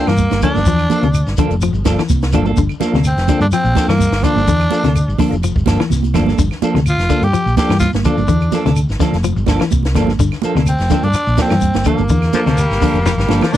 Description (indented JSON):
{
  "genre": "afrobeat",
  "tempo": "126 BPM",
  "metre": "4/4",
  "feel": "swing 53% on 16ths",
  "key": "G dorian",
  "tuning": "A4 = 440 Hz",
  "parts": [
    { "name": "growling tenor saxophone", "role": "melody", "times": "0.0-13.6 s", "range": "Bb3 to G4", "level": "-19 LUFS", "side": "equal", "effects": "none" },
    { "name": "mellow tonewheel organ", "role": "accompaniment", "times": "0.0-13.5 s", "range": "Bb3 to C5", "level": "-21 LUFS", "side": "left 5 dB", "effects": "slow rotary speaker, chorus vibrato" },
    { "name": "clean electric guitar", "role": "stabs", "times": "0.0-13.4 s", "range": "F3 to A4", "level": "-20 LUFS", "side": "right 6 dB", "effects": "none" },
    { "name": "semi-hollow electric guitar", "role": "arpeggios", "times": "0.1-13.6 s", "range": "C3 to F3", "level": "-21 LUFS", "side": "left 7 dB", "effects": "spring reverb" },
    { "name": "hollow-body short-scale fingered electric bass", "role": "bass", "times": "0.1-13.6 s", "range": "F1 to G2", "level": "-16 LUFS", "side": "equal", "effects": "none" },
    { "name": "compact cocktail drum kit", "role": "drums", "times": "0.1-13.6 s", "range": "hi-hat, kick drum, snare drum", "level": "-20 LUFS", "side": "equal", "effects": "none" },
    { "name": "claves", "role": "percussion", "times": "0.1-13.5 s", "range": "none", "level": "-32 LUFS", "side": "right 16 dB", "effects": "none" },
    { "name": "shekere", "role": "percussion", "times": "0.1-13.6 s", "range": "none", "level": "-26 LUFS", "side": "left 2 dB", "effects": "none" },
    { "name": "congas", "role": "percussion", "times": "0.2-13.6 s", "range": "none", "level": "-22 LUFS", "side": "right 12 dB", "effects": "none" },
    { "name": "raspy baritone saxophone", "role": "second line", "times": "12.3-13.6 s", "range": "F3 to Bb3", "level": "-22 LUFS", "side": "left 3 dB", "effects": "tape echo" }
  ],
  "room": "light reverb",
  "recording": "dry, close 1970s-style studio recording",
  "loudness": "-12 LUFS",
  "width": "side -12 dB against mid",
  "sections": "0.0-13.6 A section",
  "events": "drum fill 13.1-13.6",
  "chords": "0.0 Gm9"
}